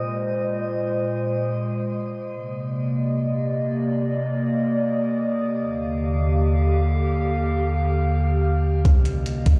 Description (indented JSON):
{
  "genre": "hip hop, atmospheric cloud-rap",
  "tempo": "free time",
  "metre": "none",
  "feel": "none",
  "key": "C minor",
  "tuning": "A4 = 440 Hz",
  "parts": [
    { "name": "warbly tape-like pad", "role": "sustained chords", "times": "0.0-9.6 s", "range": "Eb2 to F5", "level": "-24 LUFS", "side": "equal", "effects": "chorus, built-in reverb, low-pass filter" },
    { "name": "clean 808-style bass", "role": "bass", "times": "8.9-9.6 s", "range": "C2", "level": "-22 LUFS", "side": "equal", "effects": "none" },
    { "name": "breakbeat sampler-style drum kit", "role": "drums", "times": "8.9-9.6 s", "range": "hi-hat, kick drum", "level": "-20 LUFS", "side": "equal", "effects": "vintage 12-bit sampler grit" }
  ],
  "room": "moderate shimmer reverb, RT60 7.2 s",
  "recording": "played on a big sound system in a bare room, stone room reverb",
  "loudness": "-23 LUFS",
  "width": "mono",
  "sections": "0.0-8.9 A section",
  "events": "none",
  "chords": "0.0 Bb9sus4; 2.3 Cm9; 5.6 Ebmaj9; 8.9 Cm9",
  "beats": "free time"
}